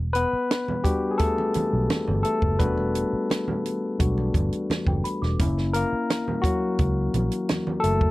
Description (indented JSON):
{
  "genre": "lush 1970s-style soul",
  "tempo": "86 BPM",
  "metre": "4/4",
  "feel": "straight",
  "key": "E dorian",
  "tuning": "A4 = 440 Hz",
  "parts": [
    { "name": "vintage muted fingered electric bass", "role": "bass", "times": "0.0-8.1 s", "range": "E1 to C#2", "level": "-25 LUFS", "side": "equal", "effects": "none" },
    { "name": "barky tine electric piano", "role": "accompaniment", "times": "0.1-8.1 s", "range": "F#3 to B4", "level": "-24 LUFS", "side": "left 2 dB", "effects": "overdrive" },
    { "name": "compact cocktail drum kit", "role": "drums", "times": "0.1-8.1 s", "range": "hi-hat, kick drum, snare drum", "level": "-26 LUFS", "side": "right 1 dB", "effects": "none" },
    { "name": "congas", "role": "percussion", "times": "0.7-7.8 s", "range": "none", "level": "-33 LUFS", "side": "right 3 dB", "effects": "none" },
    { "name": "small celesta", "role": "texture", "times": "4.9-5.5 s", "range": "G5 to D6", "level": "-35 LUFS", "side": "equal", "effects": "none" }
  ],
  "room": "little or no reverb",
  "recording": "dry, close 1970s-style studio recording",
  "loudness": "-22 LUFS",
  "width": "side -18 dB against mid",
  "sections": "0.0-8.1 A section",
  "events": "tine electric piano solo 0.0-8.1",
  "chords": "0.0 Em7; 5.4 F#7"
}